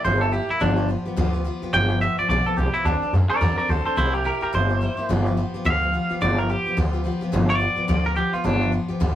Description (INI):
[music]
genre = rockabilly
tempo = 214 BPM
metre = 4/4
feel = swing 60% on 8ths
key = G mixolydian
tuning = A4 = 440 Hz
[part]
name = twangy electric guitar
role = melody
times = 0.0-8.7 s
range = D4 to G5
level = -23 LUFS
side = right 1 dB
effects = none
[part]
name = picked steel-string acoustic guitar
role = accompaniment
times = 0.0-9.2 s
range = G2 to A4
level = -27 LUFS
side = left 2 dB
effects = none
[part]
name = upright bass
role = bass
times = 0.0-9.2 s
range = G1 to F#2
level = -22 LUFS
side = equal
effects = none
[sound]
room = moderate studio reverb, RT60 0.5 s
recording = rough rehearsal-room recording, faint mains hum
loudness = -19 LUFS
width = side -11 dB against mid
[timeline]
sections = 0.0-7.3 A section; 7.3-9.2 A section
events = none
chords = 0.0 C7; 0.6 G7; 2.9 D7; 4.0 C7; 5.1 G7